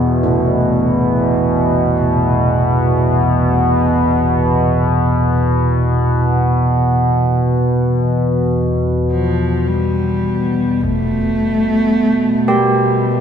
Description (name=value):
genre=dark ambient drone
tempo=free time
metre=none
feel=none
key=E phrygian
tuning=A4 = 440 Hz
part: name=analog drone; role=drone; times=0.0-13.2 s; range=E2 to B2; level=-14 LUFS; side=equal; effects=chorus
part: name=carillon bells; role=arpeggios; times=0.2-13.2 s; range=A2 to G4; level=-22 LUFS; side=right 1 dB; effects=diffuse ambient delay
part: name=dark cello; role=melody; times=9.1-13.2 s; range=F3 to A3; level=-18 LUFS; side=left 1 dB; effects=none
part: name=impact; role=percussion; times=10.8-11.1 s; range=none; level=-31 LUFS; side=equal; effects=low-pass filter on sfx
room=wet cathedral reverb, RT60 5.9 s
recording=none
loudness=-13 LUFS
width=side -8 dB against mid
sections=0.0-10.8 A section; 10.8-13.2 B section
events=none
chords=0.0 E5; 10.8 Em (rootless)